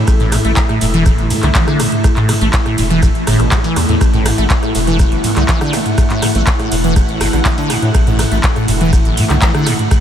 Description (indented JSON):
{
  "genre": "acid house",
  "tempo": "122 BPM",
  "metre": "4/4",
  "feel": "straight",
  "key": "unclear",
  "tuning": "A4 = 440 Hz",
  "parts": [
    { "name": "string machine, full ensemble", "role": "sustained chords", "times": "0.0-10.0 s", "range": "A3 to F#5", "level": "-19 LUFS", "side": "equal", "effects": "ensemble chorus, sidechain pumping" },
    { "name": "saturated sub bass", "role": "bass", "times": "0.0-9.4 s", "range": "E1 to A2", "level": "-17 LUFS", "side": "equal", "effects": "sidechain pumping" },
    { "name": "booming analog drum machine", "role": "drums", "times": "0.1-10.0 s", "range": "handclaps, hi-hat, ride cymbal, rim click, toms", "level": "-18 LUFS", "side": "equal", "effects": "none" },
    { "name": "dusty soul sampler-style drum kit", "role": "drums", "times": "0.1-10.0 s", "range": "hi-hat, shaker, snare drum", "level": "-31 LUFS", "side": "right 2 dB", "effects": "none" },
    { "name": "electronic kick drum", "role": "drums", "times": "0.1-10.0 s", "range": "none", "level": "-14 LUFS", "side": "equal", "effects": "none" },
    { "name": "liquid acid bass", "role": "riff", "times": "0.2-9.7 s", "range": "A1 to A3", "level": "-17 LUFS", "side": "equal", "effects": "phaser, overdrive, ensemble chorus, sidechain pumping, tape echo" }
  ],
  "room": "moderate cathedral reverb, RT60 5.6 s",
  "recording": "dreamy mix soaked in reverb",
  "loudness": "-11 LUFS",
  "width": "side -9 dB against mid",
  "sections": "0.0-10.0 A section",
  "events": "none",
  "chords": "0.0 A5"
}